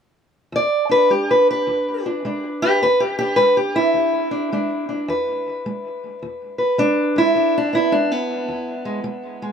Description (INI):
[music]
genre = acoustic country blues, solo or duo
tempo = 106 BPM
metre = 4/4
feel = swing 65% on 8ths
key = E mixolydian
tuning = A4 = 440 Hz
[part]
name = fingerpicked steel-string acoustic guitar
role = solo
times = 0.5-9.5 s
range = E2 to D5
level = -17 LUFS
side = equal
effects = tape echo
[sound]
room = light reverb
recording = close, detailed microphones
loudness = -17 LUFS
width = side -7 dB against mid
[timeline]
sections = 0.5-9.5 A section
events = steel-string acoustic guitar solo 0.5-9.5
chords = 0.5 E7